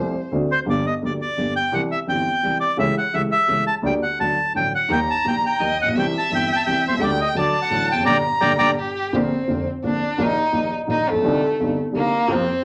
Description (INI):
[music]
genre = tango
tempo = 171 BPM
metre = 3/4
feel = rubato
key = G harmonic minor, Bb major from 9.1 s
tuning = A4 = 441 Hz
[part]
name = warm violin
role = second line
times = 0.0-0.3, 4.9-12.6 s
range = A3 to Bb5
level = -25 LUFS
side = equal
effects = none
[part]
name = dark concert grand piano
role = accompaniment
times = 0.0-12.4 s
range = F1 to G4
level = -25 LUFS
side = equal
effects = none
[part]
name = clear double bass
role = bass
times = 0.0-12.4 s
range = F1 to F2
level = -36 LUFS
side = equal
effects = none
[part]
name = bandoneon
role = melody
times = 0.5-8.7 s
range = C5 to Bb5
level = -23 LUFS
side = equal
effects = none
[sound]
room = wet club reverb, RT60 0.5 s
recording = none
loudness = -21 LUFS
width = mono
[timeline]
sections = 0.7-9.1 A section; 9.1-12.6 B section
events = band accent 8.1-9.1; violin solo 9.1-12.6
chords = 0.3 D7; 0.7 Gm; 1.7 C; 2.8 A7/C#; 3.8 Gm/D; 4.2 D; 4.9 Eb; 6.0 C; 7.0 Dsus4; 7.4 D; 8.1 Gm; 9.1 Bbadd9; 10.2 Ebadd9/Bb; 11.2 Cmadd9; 12.3 Fsus4